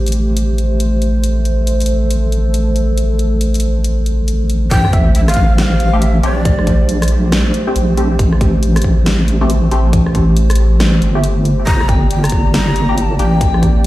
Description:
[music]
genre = deep dubstep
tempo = 138 BPM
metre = 4/4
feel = swing 61% on 16ths, half-time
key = A phrygian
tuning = A4 = 439 Hz
[part]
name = dark analog pad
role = sustained chords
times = 0.0-13.9 s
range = A3 to D5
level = -21 LUFS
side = right 2 dB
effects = chorus
[part]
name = deep soft wobble bass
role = bass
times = 0.0-13.9 s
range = G1 to Bb1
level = -13 LUFS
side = equal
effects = chorus
[part]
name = dubstep drum kit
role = drums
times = 0.1-13.9 s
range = hi-hat, rim click, snare drum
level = -21 LUFS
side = equal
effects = none
[part]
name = breathy bright long shakuhachi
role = melody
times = 4.7-7.1, 11.7-13.9 s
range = D5 to Bb5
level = -20 LUFS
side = left 2 dB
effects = dub echo
[part]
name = electronic kick drum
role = drums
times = 4.7-13.7 s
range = none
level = -14 LUFS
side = equal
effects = none
[part]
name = sub drop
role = sound effects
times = 4.7-6.5 s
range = none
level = -19 LUFS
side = equal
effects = none
[part]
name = filtered dub chord stab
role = stabs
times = 5.9-13.3 s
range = A3 to G4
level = -22 LUFS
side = left 2 dB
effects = phaser, lush chorus, dub echo
[sound]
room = light reverb, digital ambience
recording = played on a big sound system in a bare room, stone room reverb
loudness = -11 LUFS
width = side -16 dB against mid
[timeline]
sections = 0.0-4.7 A section; 4.7-13.9 B section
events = drop 4.7-13.9; impact 4.7-6.5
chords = 0.0 Am7; 11.7 Gm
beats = 0.37 0.80 | 1.24 1.67 2.10 2.54 | 2.98 3.41 3.84 4.28 | 4.71 5.15 5.58 6.02 | 6.45 6.89 7.32 7.76 | 8.19 8.63 9.06 9.50 | 9.93 10.37 10.80 11.24 | 11.67 12.11 12.54 12.97 | 13.41 13.84

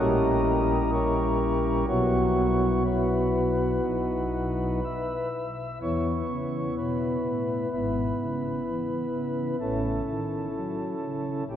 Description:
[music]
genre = classical, chorale-style piece for pipe organ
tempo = 63 BPM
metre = 4/4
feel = straight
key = unclear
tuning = A4 = 442 Hz
[part]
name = pipe organ, flutes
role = solo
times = 0.0-11.6 s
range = G#1 to E5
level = -24 LUFS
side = equal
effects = none
[sound]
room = wet church reverb, RT60 3.3 s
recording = worn, warbling old tape, cassette tape, warbly pitch drift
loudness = -24 LUFS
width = side -10 dB against mid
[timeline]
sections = 0.0-5.8 A section; 5.8-11.6 B section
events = none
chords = 0.0 A#dim7; 1.9 Bsus4; 3.8 B; 5.8 E5; 7.7 E/G#; 9.6 F#m7/A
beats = 0.93 | 1.88 2.86 3.84 4.84 | 5.81 6.77 7.72 8.66 | 9.60 10.53 11.47

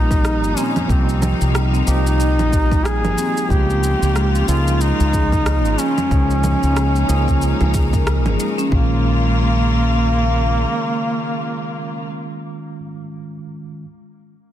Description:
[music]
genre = organic downtempo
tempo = 92 BPM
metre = 4/4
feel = swing 58% on 16ths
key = Bb dorian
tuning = A4 = 437 Hz
[part]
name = warm duduk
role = melody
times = 0.0-12.1 s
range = Bb3 to Ab4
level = -22 LUFS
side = equal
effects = tape echo
[part]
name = tine electric piano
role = accompaniment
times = 0.0-13.9 s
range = Eb3 to Ab4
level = -26 LUFS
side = right 5 dB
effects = medium stereo tremolo, sidechain pumping, tape echo
[part]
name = clear studio string section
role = sustained chords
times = 0.0-12.1 s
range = Bb2 to F4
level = -26 LUFS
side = left 2 dB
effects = sidechain pumping
[part]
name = marimba with soft mallets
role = arpeggios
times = 0.0-9.0 s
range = G3 to Bb4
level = -26 LUFS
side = left 2 dB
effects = tape echo
[part]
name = mellow fretless electric bass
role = bass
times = 0.0-10.6 s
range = G1 to Db2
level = -18 LUFS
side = equal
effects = none
[part]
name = electronic kick drum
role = drums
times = 0.1-8.9 s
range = none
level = -18 LUFS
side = equal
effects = none
[part]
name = electronic shaker, rim click and congas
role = drums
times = 0.1-8.7 s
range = none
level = -26 LUFS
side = right 1 dB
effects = none
[sound]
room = light reverb, small room ambience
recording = dense, heavily limited modern master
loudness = -15 LUFS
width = side -11 dB against mid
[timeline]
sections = 0.0-8.7 A section; 8.7-11.3 B section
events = none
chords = 0.0 Cm7; 3.5 Bbm7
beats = 0.24 | 0.89 1.55 2.20 2.85 | 3.50 4.16 4.81 5.46 | 6.11 6.76 7.42 8.07 | 8.72 9.37 10.02 10.68

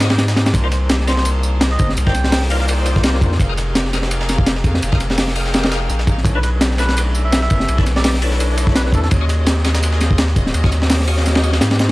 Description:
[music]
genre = drum and bass, jungle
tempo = 168 BPM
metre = 4/4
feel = swing 55% on 16ths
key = unclear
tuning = A4 = 439 Hz
[part]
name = rich studio string section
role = sustained chords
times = 0.0-11.9 s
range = A3 to G5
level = -27 LUFS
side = left 1 dB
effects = vintage 12-bit sampler grit
[part]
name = percussive tonewheel organ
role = stabs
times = 0.0-11.6 s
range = D4 to G5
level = -27 LUFS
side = left 3 dB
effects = chorus vibrato, fast rotary speaker, dub echo
[part]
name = saturated sub bass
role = bass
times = 0.0-11.9 s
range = Eb1 to Ab2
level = -18 LUFS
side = equal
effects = none
[part]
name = breakbeat sampler-style drum kit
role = drums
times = 0.0-11.9 s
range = hi-hat, snare drum, tambourine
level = -27 LUFS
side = equal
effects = high-pass filter on snare, high-pass filter on perc, high-pass filter on hats, high-pass filter on room
[part]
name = crunchy breakbeat drum kit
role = drums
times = 0.0-11.9 s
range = hi-hat, kick drum, ride cymbal, snare drum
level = -17 LUFS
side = equal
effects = none
[part]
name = melodica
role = melody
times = 0.6-2.7, 6.3-9.1 s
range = A4 to G5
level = -26 LUFS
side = right 1 dB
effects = dub echo
[sound]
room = small room ambience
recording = dry, gritty hardware recording, transformer saturation, vinyl crackle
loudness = -14 LUFS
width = side -20 dB against mid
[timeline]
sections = 0.0-11.9 A section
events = none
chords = 0.0 Ebm11; 0.5 Cm11; 3.4 Fm11; 6.3 Bm11; 9.1 Ebm11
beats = 0.18 | 0.54 0.90 1.25 1.61 | 1.97 2.33 2.68 3.04 | 3.40 3.75 4.11 4.47 | 4.83 5.18 5.54 5.90 | 6.25 6.61 6.97 7.33 | 7.68 8.04 8.40 8.76 | 9.11 9.47 9.83 10.18 | 10.54 10.90 11.26 11.61

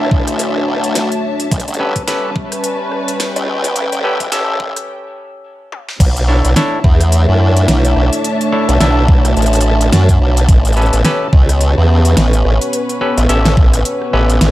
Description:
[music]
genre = glitch hop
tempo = 107 BPM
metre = 4/4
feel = swing 58% on 16ths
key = B minor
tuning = A4 = 440 Hz
[part]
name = dark analog pad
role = sustained chords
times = 0.0-14.5 s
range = G3 to F#5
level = -21 LUFS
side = equal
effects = chorus, vintage 12-bit sampler grit, sidechain pumping
[part]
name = overdriven clav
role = stabs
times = 0.0-14.5 s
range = C#4 to E5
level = -20 LUFS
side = left 1 dB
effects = sidechain pumping, tape echo
[part]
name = formant-sweep wobble bass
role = bass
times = 0.0-14.5 s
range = G1 to F#2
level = -13 LUFS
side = equal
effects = chorus, overdrive, high-pass filter
[part]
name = dark studio string section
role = texture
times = 0.0-14.5 s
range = C#4 to A5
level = -21 LUFS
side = left 2 dB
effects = sidechain pumping
[part]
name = electronic kick drum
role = drums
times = 0.1-13.7 s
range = none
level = -11 LUFS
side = equal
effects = small room ambience
[part]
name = pop drum kit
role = drums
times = 0.3-14.5 s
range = crash cymbal, hi-hat, rim click, snare drum, toms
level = -18 LUFS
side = equal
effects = high-pass filter on hats, small room ambience, high-pass filter on snare, high-pass filter on toms, high-pass filter on cymbals
[sound]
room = light reverb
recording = high-pass filter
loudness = -11 LUFS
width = side -16 dB against mid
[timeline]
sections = 0.0-6.0 A section; 6.0-14.5 B section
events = build-up 0.0-6.0; filter sweep 0.0-6.0; break 4.9-6.0; drum fill 5.7; drop 6.0-14.5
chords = 0.0 Bm11; 1.5 A9; 6.0 Bm11; 10.5 A9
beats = 0.40 0.95 | 1.52 2.08 2.64 3.20 | 3.76 4.32 4.88 5.44 | 6.00 6.56 7.12 7.68 | 8.24 8.81 9.37 9.93 | 10.49 11.05 11.61 12.17 | 12.73 13.29 13.85 14.41

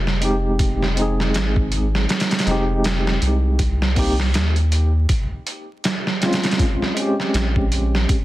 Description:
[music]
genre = trip hop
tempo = 80 BPM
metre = 4/4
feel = swing 58% on 16ths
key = F minor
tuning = A4 = 440 Hz
[part]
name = round analog bass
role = bass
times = 0.0-8.1 s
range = F1 to Eb2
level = -19 LUFS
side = equal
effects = none
[part]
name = trip hop sampler-style drum kit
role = drums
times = 0.1-8.2 s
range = hi-hat, kick drum, snare drum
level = -21 LUFS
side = right 1 dB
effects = none
[part]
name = mellow tine electric piano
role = accompaniment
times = 0.2-8.2 s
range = Ab3 to Ab4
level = -23 LUFS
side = equal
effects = medium tremolo, tape echo
[sound]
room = digital ambience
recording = dense, heavily limited modern master, vinyl crackle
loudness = -17 LUFS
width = side -16 dB against mid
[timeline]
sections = 0.0-8.2 A section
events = none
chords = 0.0 Fm7; 3.6 Cm; 6.6 Bbm7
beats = | 0.59 1.34 2.09 2.84 | 3.59 4.34 5.09 5.84 | 6.59 7.34 8.09

